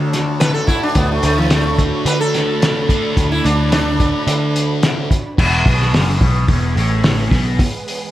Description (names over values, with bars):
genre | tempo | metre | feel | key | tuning
psychedelic rock | 108 BPM | 4/4 | straight | E mixolydian | A4 = 440 Hz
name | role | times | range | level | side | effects
warm studio string section | sustained chords | 0.0-8.1 s | E3 to B5 | -29 LUFS | right 4 dB | none
thick fuzz guitar | riff | 0.0-7.6 s | E2 to D4 | -21 LUFS | equal | distortion, phaser
picked electric bass | bass | 0.0-7.6 s | E1 to D3 | -18 LUFS | equal | none
cloth-damped thuddy drum kit | drums | 0.1-8.0 s | crash cymbal, hi-hat, kick drum, snare drum | -17 LUFS | equal | none
sitar | melody | 0.4-4.8 s | E3 to B4 | -20 LUFS | equal | tape echo
room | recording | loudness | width
light reverb, small room ambience | none | -13 LUFS | side -14 dB against mid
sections
0.0-5.4 A section; 5.4-8.1 B section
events
sitar solo 0.0-5.4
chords
0.0 Dmaj7; 5.4 E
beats
0.40 | 0.95 1.51 2.06 2.61 | 3.17 3.72 4.27 4.82 | 5.38 5.93 6.48 7.04 | 7.59